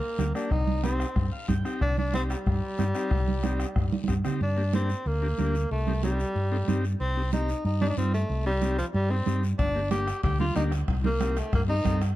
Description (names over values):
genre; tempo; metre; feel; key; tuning
latin, cumbia; 185 BPM; 4/4; straight; unclear; A4 = 436 Hz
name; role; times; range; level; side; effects
clear tenor saxophone; melody; 0.0-12.0 s; F3 to G4; -30 LUFS; equal; none
combo organ; accompaniment; 0.2-12.0 s; Bb3 to G5; -35 LUFS; left 3 dB; none
fingered electric bass; bass; 0.2-12.1 s; G1 to G2; -27 LUFS; equal; none
bombo; percussion; 0.2-4.4, 9.6-12.2 s; none; -30 LUFS; left 1 dB; none
congas; percussion; 0.2-12.0 s; none; -32 LUFS; right 6 dB; none
guiro; percussion; 0.2-12.2 s; none; -47 LUFS; left 6 dB; none
timbales; percussion; 9.6-12.2 s; none; -48 LUFS; right 6 dB; none
room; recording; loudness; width
light reverb; dark, warm production; -24 LUFS; side -15 dB against mid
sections
0.0-4.4 A section; 4.4-12.2 B section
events
transistor combo organ fill 1.2-1.8; drum fill 3.9-4.4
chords
0.0 Gm; 0.5 Cm; 4.4 Gm; 5.7 Cm; 9.6 Gm; 10.9 Cm